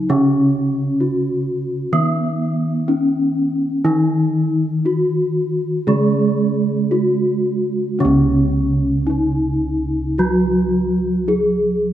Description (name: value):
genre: Javanese gamelan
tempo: 55-67 BPM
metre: 4/4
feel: straight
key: C# slendro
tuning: A4 = 438 Hz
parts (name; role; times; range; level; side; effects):
- gamelan-type bronze metallophone; melody; 0.0-11.9 s; B3-40c to G#4+20c; -20 LUFS; left 2 dB; none
- gamelan-type bronze metallophone; accompaniment; 0.0-11.9 s; C#3 to B3-40c; -20 LUFS; right 2 dB; none
- gamelan-type bossed gongs; bass; 0.0-11.9 s; C#2 to D#4+40c; -21 LUFS; equal; none
room: light reverb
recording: none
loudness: -16 LUFS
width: side -12 dB against mid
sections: 0.0-8.0 A section; 8.0-11.9 B section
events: none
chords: none